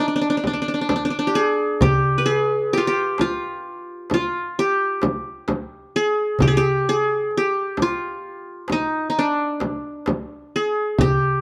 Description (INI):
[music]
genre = Arabic maqam ensemble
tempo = 131 BPM (eighths)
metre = 10/8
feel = straight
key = G maqam hijaz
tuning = A4 = 441 Hz
[part]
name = qanun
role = melody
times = 0.0-11.4 s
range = D4 to B4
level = -23 LUFS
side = equal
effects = none
[part]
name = frame drum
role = percussion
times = 0.4-11.2 s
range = none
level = -25 LUFS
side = equal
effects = none
[part]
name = darbuka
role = percussion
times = 0.9-11.2 s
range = none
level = -26 LUFS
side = equal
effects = none
[sound]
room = wet spring reverb, RT60 1.2 s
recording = none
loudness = -21 LUFS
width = mono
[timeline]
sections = 0.0-11.4 A section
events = none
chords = none